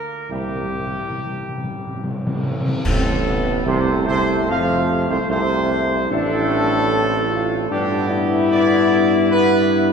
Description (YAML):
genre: classical, ceremonial fanfare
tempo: 74 BPM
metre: 3/4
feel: straight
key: F lydian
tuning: A4 = 438 Hz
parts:
  - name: dark trumpet section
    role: melody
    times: 0.0-9.9 s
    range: G4 to F5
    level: -23 LUFS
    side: right 1 dB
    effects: none
  - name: dark trombone section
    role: sustained chords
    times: 0.3-9.9 s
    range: A2 to B3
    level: -24 LUFS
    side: right 2 dB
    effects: none
  - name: mellow French horn section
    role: sustained chords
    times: 0.3-9.9 s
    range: A3 to F4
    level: -21 LUFS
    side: left 5 dB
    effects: none
  - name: mellow tuba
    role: bass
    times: 0.3-9.9 s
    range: A1 to G2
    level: -23 LUFS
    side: right 3 dB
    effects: none
  - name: cymbal swell, clash cymbals and concert bass drum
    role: percussion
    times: 0.3-4.5 s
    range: none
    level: -27 LUFS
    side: equal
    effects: none
  - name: timpani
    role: percussion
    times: 0.3-2.8 s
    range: C3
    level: -26 LUFS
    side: equal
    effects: none
room: wet cathedral reverb, RT60 5.4 s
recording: minimal, uncompressed stereo recording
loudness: -17 LUFS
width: side -6 dB against mid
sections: 0.0-2.8 A section; 2.8-9.9 B section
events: timpani fill 0.3-2.8; band accent 2.8-3.7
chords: 0.3 C7; 2.8 F/A; 7.7 G